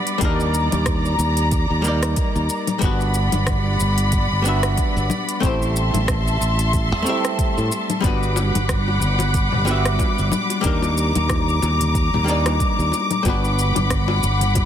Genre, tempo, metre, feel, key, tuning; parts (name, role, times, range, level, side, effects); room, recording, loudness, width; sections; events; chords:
sunset chillout; 92 BPM; 4/4; swing 57% on 16ths; G major; A4 = 440 Hz
archtop guitar, miked and amplified; accompaniment; 0.0-14.7 s; G3 to E5; -25 LUFS; moving between left 5 dB and right 4 dB; auto-pan, ping-pong delay
rich studio string section; sustained chords; 0.0-14.7 s; G3 to D6; -23 LUFS; left 1 dB
deep house drum kit; drums; 0.1-14.7 s; congas, hi-hat, rim click, shaker; -26 LUFS; left 2 dB
modern bright fingered electric bass; bass; 0.2-14.7 s; G1 to A2; -21 LUFS; equal
electronic kick drum; drums; 0.2-14.7 s; -23 LUFS; equal
bongos and congas; percussion; 8.0-14.7 s; -30 LUFS; left 4 dB
light reverb; dense, heavily limited modern master; -17 LUFS; side -10 dB against mid
0.0-14.7 A section
0.2 Ebmaj7; 2.8 Gmaj7; 5.4 Am7; 8.0 Gmaj7; 10.6 Ebmaj7; 13.3 Gmaj7